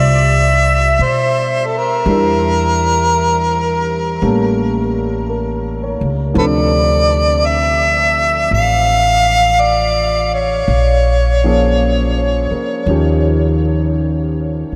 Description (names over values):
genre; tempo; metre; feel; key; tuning
jazz ballad; 56 BPM; 4/4; swing 68% on 8ths; unclear; A4 = 445 Hz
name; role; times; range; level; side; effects
mellow harmonica; melody; 0.0-13.6 s; A4 to F5; -17 LUFS; equal; digital delay
warm grand piano; accompaniment; 0.0-14.8 s; C3 to C#5; -22 LUFS; equal; lush chorus
upright bass; bass; 0.0-14.8 s; A1 to B2; -19 LUFS; equal; none
room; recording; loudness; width
wet huge ambient reverb, RT60 8.7 s; dreamy mix soaked in reverb; -14 LUFS; mono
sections
0.0-14.8 A section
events
none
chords
0.0 Fsus2; 2.1 Em7b5; 4.2 A7b9; 6.4 Dm7; 10.7 Bbm7; 12.9 Eb9